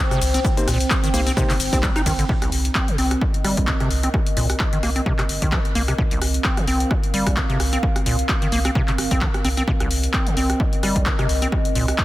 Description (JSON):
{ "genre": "acid house", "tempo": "130 BPM", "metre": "4/4", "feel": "swing 55% on 16ths", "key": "C minor", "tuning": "A4 = 440 Hz", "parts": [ { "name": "dark analog pad", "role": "sustained chords", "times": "0.0-12.0 s", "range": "C4 to G5", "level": "-28 LUFS", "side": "right 1 dB", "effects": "chorus, phaser, sidechain pumping" }, { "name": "acid bass, square", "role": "riff", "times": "0.0-11.9 s", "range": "C2 to Eb4", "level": "-24 LUFS", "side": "equal", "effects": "cassette tape, sidechain pumping, tape echo" }, { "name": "round analog bass", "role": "bass", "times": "0.0-11.9 s", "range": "G1 to C2", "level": "-24 LUFS", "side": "equal", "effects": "sidechain pumping" }, { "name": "punchy analog drum machine", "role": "drums", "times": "0.1-12.0 s", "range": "handclaps, hi-hat, ride cymbal, rim click, shaker", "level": "-25 LUFS", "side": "left 1 dB", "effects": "none" }, { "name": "electronic kick drum", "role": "drums", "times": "0.4-12.0 s", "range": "none", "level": "-22 LUFS", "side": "equal", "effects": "overdrive" }, { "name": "bell-like tine electric piano", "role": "stabs", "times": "0.6-1.8 s", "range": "Bb3 to C5", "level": "-30 LUFS", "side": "left 1 dB", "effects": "tape echo" } ], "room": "little or no reverb", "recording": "dense, heavily limited modern master", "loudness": "-18 LUFS", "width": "side -16 dB against mid", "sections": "0.0-2.3 A section; 2.3-12.0 B section", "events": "drop 0.0-2.3", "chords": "0.0 Cm7" }